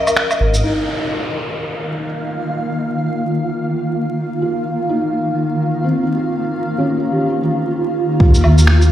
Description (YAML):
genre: future garage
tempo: 127 BPM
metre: 4/4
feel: swing 60% on 16ths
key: unclear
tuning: A4 = 439 Hz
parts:
  - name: felt-muted upright piano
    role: accompaniment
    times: 0.0-8.9 s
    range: C4 to G4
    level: -23 LUFS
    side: equal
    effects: sidechain pumping, tape echo
  - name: granular cloud pad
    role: sustained chords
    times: 0.0-8.9 s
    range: Eb3 to F5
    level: -19 LUFS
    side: equal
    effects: built-in reverb, sidechain pumping
  - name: flickering grainy texture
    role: texture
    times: 0.0-8.2 s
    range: F5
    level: -30 LUFS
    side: right 2 dB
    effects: built-in reverb
  - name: electronic shaker, woodblock and finger snaps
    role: drums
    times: 0.1-0.6, 8.3-8.9 s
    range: none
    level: -18 LUFS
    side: right 1 dB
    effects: studio reverb
  - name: dark detuned saw bass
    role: bass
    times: 0.4-0.6, 8.2-8.9 s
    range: Ab1 to Eb2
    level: -11 LUFS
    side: equal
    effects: tube saturation, sidechain pumping
  - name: downlifter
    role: sound effects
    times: 0.6-4.4 s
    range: none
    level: -28 LUFS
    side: equal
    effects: none
  - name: electronic kick drum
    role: drums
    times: 8.2-8.3 s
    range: none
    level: -11 LUFS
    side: equal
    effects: studio reverb
room: moderate digital room reverb, RT60 0.8 s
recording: played on a big sound system in a bare room, stone room reverb, vinyl crackle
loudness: -15 LUFS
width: side -12 dB against mid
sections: 0.6-8.2 A section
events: break 0.0-0.6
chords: 0.0 Bbm; 0.6 Ebsus2